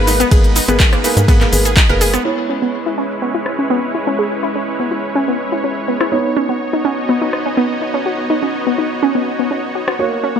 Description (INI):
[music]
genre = progressive house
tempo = 124 BPM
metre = 4/4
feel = straight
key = C# dorian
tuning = A4 = 439 Hz
[part]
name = supersaw pad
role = sustained chords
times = 0.0-10.4 s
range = G#3 to A#5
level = -21 LUFS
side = right 1 dB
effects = vintage 12-bit sampler grit, sidechain pumping, low-pass filter
[part]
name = felt-muted upright piano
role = stabs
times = 0.0-10.4 s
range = A#3 to C#5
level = -20 LUFS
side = right 3 dB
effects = sidechain pumping, low-pass filter, ping-pong delay
[part]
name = tight sequencer bass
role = bass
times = 0.0-2.2 s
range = F#1 to G#2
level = -18 LUFS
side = equal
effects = sidechain pumping
[part]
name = glassy wavetable pluck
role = arpeggios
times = 0.1-10.4 s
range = A#3 to A#4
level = -18 LUFS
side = equal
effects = chorus, sidechain pumping, ping-pong delay
[part]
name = deep house drum kit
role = drums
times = 0.1-10.0 s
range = crash cymbal, handclaps, hi-hat, ride cymbal, rim click, shaker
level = -19 LUFS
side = equal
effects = low-pass filter on hats, low-pass filter on cymbals, low-pass filter on perc, low-pass filter on snare
[part]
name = electronic kick drum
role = drums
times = 0.3-1.9 s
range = none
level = -12 LUFS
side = equal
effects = none
[sound]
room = moderate digital room reverb, RT60 1.3 s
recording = none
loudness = -14 LUFS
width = side -8 dB against mid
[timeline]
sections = 0.0-2.2 A section; 2.2-10.4 B section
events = drop 0.0-2.2; filter sweep on synth arpeggio sound 2.2-10.4; filter sweep on supersaw synth 2.2-10.4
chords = 0.0 G#madd9; 2.2 C#m7; 6.1 Badd9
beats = | 0.32 0.80 1.28 1.77 | 2.25 2.73 3.22 3.70 | 4.19 4.67 5.15 5.64 | 6.12 6.61 7.09 7.57 | 8.06 8.54 9.03 9.51 | 9.99